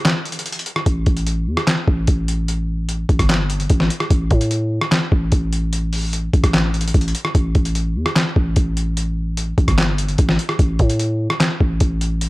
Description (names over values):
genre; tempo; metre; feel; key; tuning
hip hop, trap; 148 BPM; 4/4; half-time; unclear; A4 = 440 Hz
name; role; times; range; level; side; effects
lo-fi sampler-style drum kit; drums; 0.1-12.3 s; handclaps, hi-hat, kick drum, rim click, snare drum; -17 LUFS; equal; overdrive
growling 808-style bass; bass; 0.9-12.3 s; G1 to A2; -19 LUFS; equal; none
room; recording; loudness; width
little or no reverb; dark, warm production; -16 LUFS; side -20 dB against mid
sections
0.9-12.3 A section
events
break 0.0-0.9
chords
none